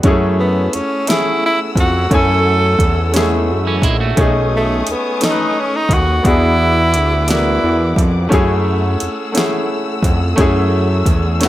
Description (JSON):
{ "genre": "slow six-eight R&B", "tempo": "58 BPM (dotted quarters)", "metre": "6/8", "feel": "straight", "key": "F# minor", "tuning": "A4 = 441 Hz", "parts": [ { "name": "warm baby grand piano", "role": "accompaniment", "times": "0.0-11.5 s", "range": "G#3 to G#5", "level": "-18 LUFS", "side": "left 1 dB", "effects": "plate reverb" }, { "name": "muted studio string section", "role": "sustained chords", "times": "0.0-11.5 s", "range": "A3 to E6", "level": "-26 LUFS", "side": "left 2 dB", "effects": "plate reverb" }, { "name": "fat analog bass", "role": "bass", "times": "0.0-11.5 s", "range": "A#1 to F#2", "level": "-16 LUFS", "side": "equal", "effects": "none" }, { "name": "smooth R&B drum kit", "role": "drums", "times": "0.0-11.5 s", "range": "hi-hat, kick drum, snare drum", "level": "-17 LUFS", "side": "equal", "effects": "none" }, { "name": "warm tenor saxophone", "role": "melody", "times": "0.4-8.0 s", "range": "A3 to A4", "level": "-17 LUFS", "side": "right 1 dB", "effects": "plate reverb, tape echo" }, { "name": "electric guitar at the edge of break-up", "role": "second line", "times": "3.7-4.3 s", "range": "E3 to F#4", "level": "-20 LUFS", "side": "right 6 dB", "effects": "phaser" } ], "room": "light reverb", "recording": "none", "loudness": "-12 LUFS", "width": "side -14 dB against mid", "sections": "0.0-11.5 A section", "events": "none", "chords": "0.0 F#m7; 4.2 B13; 6.2 E9; 8.3 F#m7" }